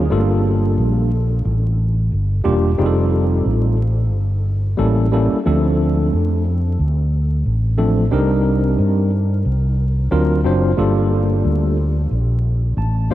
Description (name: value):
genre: hip hop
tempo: 90 BPM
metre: 4/4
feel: swing 59% on 16ths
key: unclear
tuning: A4 = 440 Hz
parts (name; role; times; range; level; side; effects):
- tine electric piano; accompaniment; 0.0-13.1 s; F3 to A5; -20 LUFS; equal; medium stereo tremolo
- fretless electric bass; bass; 0.0-13.1 s; E1 to G2; -17 LUFS; equal; lush chorus
room: moderate huge ambient reverb, RT60 4.1 s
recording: dreamy mix soaked in reverb, vinyl crackle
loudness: -15 LUFS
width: side -14 dB against mid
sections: 0.0-13.1 A section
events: tine electric piano fill 12.4-13.1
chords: 0.1 Gm9; 2.8 F9; 4.8 A7b9; 5.4 Dm7; 8.1 Cm9; 10.1 D7alt; 10.8 Gm9